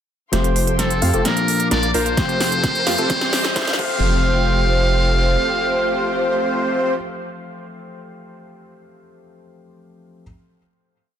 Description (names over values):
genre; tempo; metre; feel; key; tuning
EDM, festival progressive house; 130 BPM; 4/4; straight; F major; A4 = 440 Hz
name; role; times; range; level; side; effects
dark concert grand piano; accompaniment; 0.3-10.2 s; Bb2 to Bb4; -28 LUFS; left 3 dB; sidechain pumping
muted studio string section; sustained chords; 0.3-6.9 s; F4 to E6; -31 LUFS; left 1 dB; sidechain pumping
wide unison lead; arpeggios; 0.3-6.9 s; A4 to F5; -24 LUFS; left 1 dB; sidechain pumping, dub echo
supersaw stab; riff; 0.3-6.9 s; A3 to F5; -25 LUFS; right 1 dB; sidechain pumping, low-pass filter, dub echo
saturated sub bass; bass; 0.3-5.4 s; F1 to F2; -21 LUFS; equal; sidechain pumping
big-room dance drum kit; drums; 0.3-3.9 s; crash cymbal, hi-hat, snare drum; -23 LUFS; right 1 dB; none
riser and impact; sound effects; 2.3-7.0 s; none; -30 LUFS; equal; none
trumpet with metal mute; melody; 0.8-6.9 s; A4 to F5; -22 LUFS; equal; dub echo
electronic kick drum; drums; 2.2-3.9 s; none; -25 LUFS; equal; none
room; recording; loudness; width
light reverb, digital ambience; dense, heavily limited modern master, high-pass filter; -16 LUFS; side -9 dB against mid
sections
0.3-4.0 build; 4.0-7.7 final hit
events
build-up 0.3-4.0; drum fill 0.3-4.0; filter sweep on supersaw synth 0.3-4.0; filter sweep 0.3-4.0; riser 2.3-4.0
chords
0.3 Fadd9; 1.3 Bb; 2.2 Fadd9; 3.1 C; 3.8 Fadd9